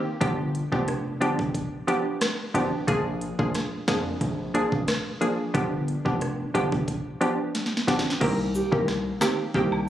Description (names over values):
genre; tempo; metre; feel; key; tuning
dancehall; 90 BPM; 4/4; straight; C minor; A4 = 439 Hz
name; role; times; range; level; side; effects
hollow square pluck; accompaniment; 0.0-9.9 s; Eb3 to Ab4; -26 LUFS; equal; chorus
hard-hitting 808-style bass; bass; 0.2-9.9 s; F1 to F2; -29 LUFS; equal; none
island pop drum kit; drums; 0.2-9.7 s; crash cymbal, hi-hat, kick drum, rim click, snare drum; -29 LUFS; equal; overdrive, vintage 12-bit sampler grit
breathy flute-like synth lead; melody; 8.2-9.7 s; G4 to Bb4; -28 LUFS; right 3 dB; chorus, tape echo
cabasa and woodblock; percussion; 8.5-9.9 s; none; -34 LUFS; right 1 dB; none
room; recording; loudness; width
light reverb; recorded on a phone in the room, club reverb; -23 LUFS; side -12 dB against mid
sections
0.0-8.2 A section; 8.2-9.9 B section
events
drum fill 7.5-8.2; hi-hats muted 8.2-9.9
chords
0.2 G7; 2.9 Bb7; 5.5 G7; 8.2 Cm7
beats
| 0.21 0.88 1.55 2.21 | 2.88 3.55 4.21 4.88 | 5.55 6.21 6.88 7.55 | 8.21 8.88 9.55